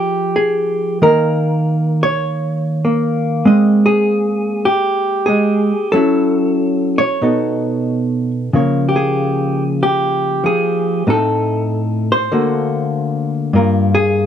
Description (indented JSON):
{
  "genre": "solo jazz",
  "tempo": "90-100 BPM",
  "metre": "4/4",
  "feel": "swing 67% on 8ths, rubato",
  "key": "unclear",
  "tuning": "A4 = 440 Hz",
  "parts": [
    { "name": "hollow-body jazz guitar", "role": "solo", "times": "0.0-14.3 s", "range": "G2 to Eb5", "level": "-14 LUFS", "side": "equal", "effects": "none" }
  ],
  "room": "moderate studio ambience, RT60 0.5 s",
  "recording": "none",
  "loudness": "-14 LUFS",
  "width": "side -9 dB against mid",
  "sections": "0.0-14.3 A section",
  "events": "none",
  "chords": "0.0 Fmadd9; 1.0 Eb5; 3.4 Abmaj9; 5.9 F#m7; 7.2 B9; 8.5 Db6; 11.1 Adim; 12.3 D7b13; 13.5 Gm7"
}